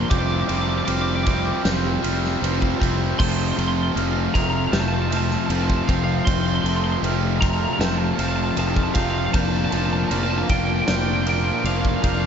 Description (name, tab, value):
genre	post-rock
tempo	78 BPM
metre	4/4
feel	straight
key	F major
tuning	A4 = 440 Hz
part	twelve-string electric guitar	melody	0.0-12.3 s	F5 to D6	-27 LUFS	right 1 dB	spring reverb, slapback echo
part	hand-pumped harmonium	sustained chords	0.0-12.3 s	A3 to G5	-36 LUFS	equal	none
part	glockenspiel with rubber mallets	arpeggios	0.0-12.3 s	F6 to G6	-35 LUFS	right 3 dB	slapback echo
part	crunchy overdriven guitar	riff	0.0-12.3 s	F2 to C4	-26 LUFS	left 12 dB	none
part	thick fuzz guitar	riff	0.0-12.3 s	F3 to F4	-26 LUFS	right 14 dB	distortion
part	fingered electric bass	bass	0.0-12.3 s	F1	-25 LUFS	equal	none
part	big rock drum kit	drums	0.1-12.2 s	crash cymbal, kick drum, ride cymbal, snare drum	-25 LUFS	equal	none
room	small room ambience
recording	nothing above 7.6 kHz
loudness	-19 LUFS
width	side -7 dB against mid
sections	0.0-12.3 A section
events	none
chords	0.1 Csus4/F; 3.2 F; 9.3 Bbmaj7/F